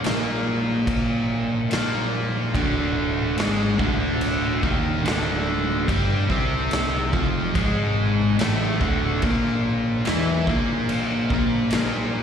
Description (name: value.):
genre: stoner and doom metal.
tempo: 72 BPM.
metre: 4/4.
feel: straight.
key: D minor.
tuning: A4 = 439 Hz.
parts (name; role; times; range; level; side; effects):
fuzz guitar; riff; 0.0-12.2 s; D2 to E4; -29 LUFS; left 10 dB; distortion, slapback echo.
overdriven electric guitar; riff; 0.0-12.2 s; D2 to E4; -26 LUFS; left 1 dB; slapback echo.
thick fuzz guitar; riff; 0.0-12.2 s; D2 to E4; -27 LUFS; right 7 dB; distortion, slapback echo.
overdriven picked electric bass; bass; 0.0-12.2 s; D1 to E2; -27 LUFS; equal; none.
raw garage drum kit; drums; 0.0-11.9 s; crash cymbal, kick drum, snare drum; -26 LUFS; equal; none.
room: little or no reverb.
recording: live gig heard through the venue's PA, recital hall reverb.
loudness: -20 LUFS.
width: side -8 dB against mid.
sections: 0.0-12.2 A section.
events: none.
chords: 0.0 N.C.; 2.6 Dm; 9.2 N.C..